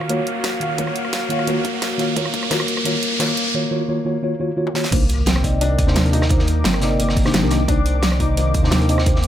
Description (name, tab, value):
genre	liquid drum and bass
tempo	174 BPM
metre	4/4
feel	straight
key	C minor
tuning	A4 = 440 Hz
part	mellow tine electric piano	accompaniment	0.0-9.2 s	C3 to F5	-22 LUFS	equal	phaser
part	warm analog pad	sustained chords	0.0-9.3 s	Eb3 to D6	-27 LUFS	equal	chorus
part	warm sub bass	bass	0.0-9.3 s	G1 to Gb2	-20 LUFS	equal	high-pass filter
part	pop drum kit	drums	0.0-9.3 s	crash cymbal, hi-hat, rim click, snare drum, toms	-24 LUFS	right 1 dB	high-pass filter on hats, high-pass filter on snare, high-pass filter on toms, high-pass filter on cymbals
part	riser and impact	sound effects	0.0-6.3 s	none	-25 LUFS	right 1 dB	none
part	felt-muted upright piano	arpeggios	0.1-9.3 s	Bb3 to Eb4	-26 LUFS	left 4 dB	low-pass filter, ping-pong delay
part	electronic kick drum	drums	0.8-2.4, 4.9-9.1 s	none	-20 LUFS	equal	high-pass filter on kick
part	crunchy breakbeat drum kit	drums	4.9-9.3 s	hi-hat, snare drum	-28 LUFS	equal	high-pass filter on hats, high-pass filter on snare, high-pass filter on room
room	light reverb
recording	none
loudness	-16 LUFS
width	side -11 dB against mid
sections	0.0-4.9 A section; 4.9-9.3 B section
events	build-up 0.0-4.9; riser 0.0-3.5; drum fill 4.7; drop 4.9-9.3; impact 4.9-6.3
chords	0.0 Ebm9; 4.9 Cm9